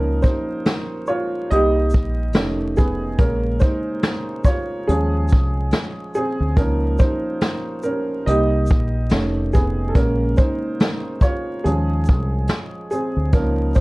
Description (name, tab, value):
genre	lo-fi hip hop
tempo	71 BPM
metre	4/4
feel	swing 58% on 16ths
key	Bb dorian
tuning	A4 = 442 Hz
part	warm upright piano	accompaniment	0.0-13.8 s	Db3 to Eb5	-22 LUFS	right 1 dB	cassette tape
part	deep dub fingered electric bass	bass	0.0-13.7 s	F1 to Eb2	-21 LUFS	equal	none
part	vintage brush drum kit	drums	0.2-13.8 s	hi-hat, kick drum, shaker, snare drum	-18 LUFS	equal	none
room	light reverb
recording	dark, warm production, vinyl crackle, faint mains hum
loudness	-17 LUFS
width	side -22 dB against mid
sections	0.0-13.8 A section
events	upright piano solo 0.0-13.8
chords	0.0 Db6; 1.5 Cm7; 2.3 F7alt; 3.2 Bbm9; 4.9 Eb9sus4; 6.6 Db6; 8.3 Cm7; 9.1 F7alt; 10.0 Bbm9; 11.6 Eb9sus4